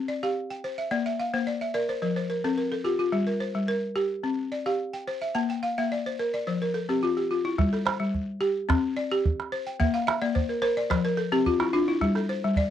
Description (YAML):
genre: west african traditional, West African string and xylophone music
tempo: 108 BPM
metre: 4/4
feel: straight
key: G dorian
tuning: A4 = 444 Hz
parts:
  - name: balafon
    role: arpeggios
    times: 0.0-12.7 s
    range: F3 to A5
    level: -25 LUFS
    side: left 1 dB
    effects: none
  - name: calabash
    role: percussion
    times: 7.6-12.7 s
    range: none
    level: -26 LUFS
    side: right 3 dB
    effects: none
room: light reverb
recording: dry, close 1970s-style studio recording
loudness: -24 LUFS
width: side -10 dB against mid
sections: 0.0-7.6 A section; 7.6-12.7 B section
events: balafon fill 0.9-3.1, 5.4-7.6, 9.8-12.0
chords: 0.0 C; 0.9 Bbadd9; 2.0 F5; 3.1 Gm; 4.2 C; 5.4 Bbmaj9#11; 6.5 F5; 7.6 Gsus24; 8.7 C5; 9.8 Bb69; 10.9 F5; 12.0 G5